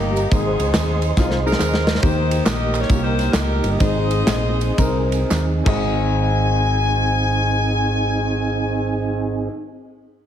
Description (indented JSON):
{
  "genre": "uptempo gospel",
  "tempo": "105-140 BPM",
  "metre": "4/4",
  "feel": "swing 65% on 8ths",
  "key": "Ab major",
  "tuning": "A4 = 440 Hz",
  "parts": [
    { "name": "warm saxophone section", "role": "melody", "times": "0.0-9.5 s", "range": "Bb3 to Ab5", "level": "-24 LUFS", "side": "left 3 dB", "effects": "none" },
    { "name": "warm upright piano", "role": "accompaniment", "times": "0.0-9.5 s", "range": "Ab1 to Eb5", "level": "-26 LUFS", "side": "left 4 dB", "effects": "none" },
    { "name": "percussive tonewheel organ", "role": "sustained chords", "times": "0.0-9.5 s", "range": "Bb3 to C6", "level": "-25 LUFS", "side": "right 4 dB", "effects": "slow rotary speaker, chorus vibrato" },
    { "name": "fingered electric bass", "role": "bass", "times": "0.0-9.5 s", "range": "G1 to Eb2", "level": "-21 LUFS", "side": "equal", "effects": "none" },
    { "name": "modern studio drum kit", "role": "drums", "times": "0.2-5.8 s", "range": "crash cymbal, kick drum, ride cymbal, snare drum", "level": "-22 LUFS", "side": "equal", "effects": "none" },
    { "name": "tambourine and handclaps", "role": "percussion", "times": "0.2-6.2 s", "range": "none", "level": "-34 LUFS", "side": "right 5 dB", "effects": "none" }
  ],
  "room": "moderate recital hall reverb, RT60 1.6 s",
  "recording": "heavily compressed radio sound",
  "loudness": "-17 LUFS",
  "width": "side -9 dB against mid",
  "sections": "0.0-2.0 A section; 2.0-5.9 B section; 5.9-10.3 C section",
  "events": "drum fill 1.2-2.0, 5.3-5.9; slowing down 2.0-5.9",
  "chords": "0.3 Ab; 2.0 Eb; 3.8 Ab"
}